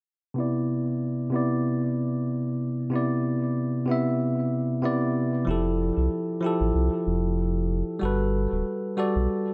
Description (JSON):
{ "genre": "sunset chillout", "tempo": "94 BPM", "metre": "4/4", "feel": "swing 55% on 16ths", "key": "C major", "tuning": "A4 = 440 Hz", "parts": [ { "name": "bell-like tine electric piano", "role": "accompaniment", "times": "0.3-9.5 s", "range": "C3 to E5", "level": "-27 LUFS", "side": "equal", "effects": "low-pass filter, tape echo" }, { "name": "round analog bass", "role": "bass", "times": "5.5-9.3 s", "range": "D1 to C2", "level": "-28 LUFS", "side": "equal", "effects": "none" } ], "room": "moderate scoring stage reverb, RT60 1.9 s, digital ambience", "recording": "none", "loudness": "-26 LUFS", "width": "mono", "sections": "0.4-9.5 A section", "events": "filter sweep on tine electric piano 0.4-9.5; break 9.3", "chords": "0.4 Cmaj9; 5.5 Fmaj9; 8.0 Gmaj9" }